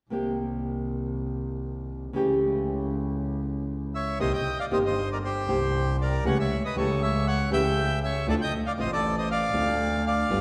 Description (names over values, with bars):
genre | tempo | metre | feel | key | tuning
tango | 118 BPM | 4/4 | rubato | unclear | A4 = 442 Hz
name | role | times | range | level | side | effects
nylon-string guitar | accompaniment | 0.1-10.4 s | C3 to G4 | -32 LUFS | equal | none
clear double bass | bass | 0.1-10.4 s | G1 to D2 | -31 LUFS | equal | none
bandoneon | melody | 3.9-10.4 s | G4 to G5 | -30 LUFS | equal | none
room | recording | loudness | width
wet concert hall reverb, RT60 1.9 s | recorded in a church or concert hall | -27 LUFS | mono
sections
0.1-4.2 A section; 4.2-10.4 B section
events
none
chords
0.1 Cm7; 2.1 A7/C#; 4.2 Cm7; 6.2 A7/C#; 8.3 Dm7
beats
| 0.11 0.62 1.14 1.64 | 2.15 2.65 3.17 3.68 | 4.20 4.71 5.23 5.74 | 6.25 6.75 7.26 7.76 | 8.27 8.77 9.28 9.79 | 10.29